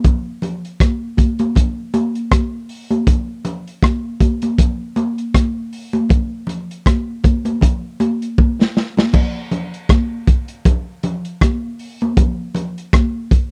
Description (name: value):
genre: reggae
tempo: 79 BPM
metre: 4/4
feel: swing 58% on 16ths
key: none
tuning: none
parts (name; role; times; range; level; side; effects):
- crunchy breakbeat drum kit; drums; 0.0-13.5 s; crash cymbal, hi-hat, kick drum, rim click, snare drum; -16 LUFS; equal; none
- congas; percussion; 0.0-13.1 s; none; -23 LUFS; equal; none
room: little or no reverb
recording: dry, close 1970s-style studio recording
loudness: -18 LUFS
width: mono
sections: 0.0-9.1 A section; 9.1-13.5 B section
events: drum fill 8.4-9.1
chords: none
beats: | 0.05 0.80 1.56 2.32 | 3.08 3.83 4.59 5.35 | 6.11 6.87 7.62 8.38 | 9.14 9.90 10.66 11.41 | 12.17 12.93